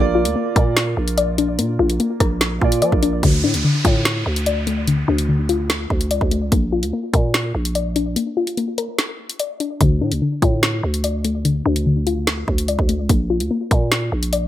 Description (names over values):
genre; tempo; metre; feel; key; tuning
hip hop, drill; 146 BPM; 4/4; half-time; D minor; A4 = 440 Hz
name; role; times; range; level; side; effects
dark concert grand piano; accompaniment; 0.0-3.3 s; Bb3 to D5; -24 LUFS; right 8 dB; analog chorus
soft round pluck; arpeggios; 0.0-14.5 s; D3 to D5; -21 LUFS; left 4 dB; chorus, low-pass filter, digital delay
growling 808-style bass; bass; 0.0-14.5 s; Bb1 to F3; -21 LUFS; right 1 dB; none
drill drum kit; drums; 0.3-14.4 s; hi-hat, kick drum, rim click, snare drum; -20 LUFS; right 1 dB; none
downlifter; sound effects; 3.2-6.5 s; none; -27 LUFS; right 2 dB; none
room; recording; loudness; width
light reverb; bright 1980s-style digital production; -17 LUFS; side -12 dB against mid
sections
0.0-3.2 A section; 3.2-14.5 B section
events
filter sweep on synth pluck 3.2-14.5; break 8.2-9.8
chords
0.0 Bb; 3.2 Dm; 6.5 Bb; 9.8 Dm; 13.1 Bb